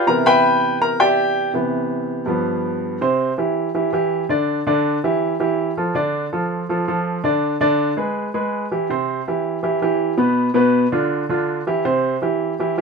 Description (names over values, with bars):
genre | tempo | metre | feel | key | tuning
jazz | 163 BPM | 4/4 | straight | C major | A4 = 439 Hz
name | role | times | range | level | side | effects
warm baby grand piano | solo | 0.0-12.8 s | G2 to B5 | -17 LUFS | right 1 dB | none
room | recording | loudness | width
moderate studio reverb, RT60 0.7 s | minimal, uncompressed stereo recording | -17 LUFS | side -4 dB against mid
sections
0.0-3.0 A section; 3.0-12.8 B section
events
grand piano solo 0.0-3.0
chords
0.1 Cmaj9; 2.3 G7; 3.0 Cadd9; 4.5 Dsus24; 5.2 A5; 6.0 Dm; 7.4 G#dim/D; 8.2 E; 8.9 Cmaj7; 10.4 G6 (rootless); 11.9 C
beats
| 0.08 0.45 0.81 1.18 | 1.55 1.91 2.28 2.65 | 3.01 3.38 3.75 4.11 | 4.48 4.85 5.21 5.58 | 5.95 6.32 6.69 7.05 | 7.42 7.79 8.16 8.53 | 8.90 9.27 9.63 10.00 | 10.37 10.74 11.11 11.48 | 11.85 12.22 12.59